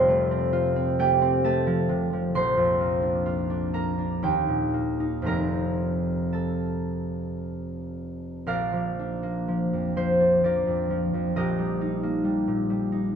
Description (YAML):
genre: classical, solo harp piece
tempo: 54-68 BPM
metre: 3/4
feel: rubato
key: Bb major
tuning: A4 = 440 Hz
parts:
  - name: concert harp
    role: solo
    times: 0.0-13.2 s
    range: F1 to D6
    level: -23 LUFS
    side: equal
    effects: none
room: moderate concert hall reverb, RT60 2.0 s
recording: none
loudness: -23 LUFS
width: side -7 dB against mid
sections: 0.0-8.5 A section; 8.5-13.2 B section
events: none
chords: 0.0 F; 2.3 Bb; 4.2 Eb; 5.3 F; 8.5 Bb; 11.4 Eb/Bb